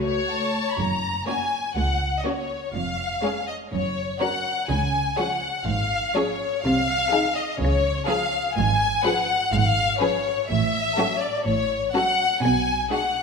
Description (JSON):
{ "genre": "cinematic, playful, whimsical film cue", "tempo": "123 BPM", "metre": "4/4", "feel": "straight", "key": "F# major, F# minor from 8.6 s", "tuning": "A4 = 442 Hz", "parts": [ { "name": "warm studio violin section", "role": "second line", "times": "0.0-13.2 s", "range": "F#4 to C#5", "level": "-28 LUFS", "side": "left 3 dB", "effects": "none" }, { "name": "rich studio viola section", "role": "accompaniment", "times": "0.0-13.2 s", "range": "D#3 to D#4", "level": "-31 LUFS", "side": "right 1 dB", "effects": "none" }, { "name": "rich studio cello section", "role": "bass", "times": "0.0-12.8 s", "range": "C#2 to C#3", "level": "-28 LUFS", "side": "right 3 dB", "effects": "none" }, { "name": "rich studio double bass section", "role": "bass", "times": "0.0-12.8 s", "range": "E#1 to C#2", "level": "-29 LUFS", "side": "right 2 dB", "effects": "none" }, { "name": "rich studio violin section", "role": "melody", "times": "0.3-13.2 s", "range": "C#5 to B5", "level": "-23 LUFS", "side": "left 3 dB", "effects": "none" } ], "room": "wet scoring stage reverb, RT60 1.7 s", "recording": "minimal, uncompressed stereo recording", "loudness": "-21 LUFS", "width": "side -5 dB against mid", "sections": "0.8-13.2 A section", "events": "none", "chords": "0.0 F#m; 0.8 F#; 2.7 C#/E#; 3.7 F#; 4.7 C#; 6.6 G#/B#; 7.6 C#; 8.6 C#7/G#; 10.5 F#m/A; 12.4 G#m7b5/B", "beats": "0.28 | 0.78 1.27 1.76 2.25 | 2.75 3.23 3.72 4.21 | 4.70 5.19 5.68 6.16 | 6.64 7.13 7.60 8.08 | 8.56 9.04 9.52 10.01 | 10.49 10.98 11.46 11.95 | 12.43 12.92" }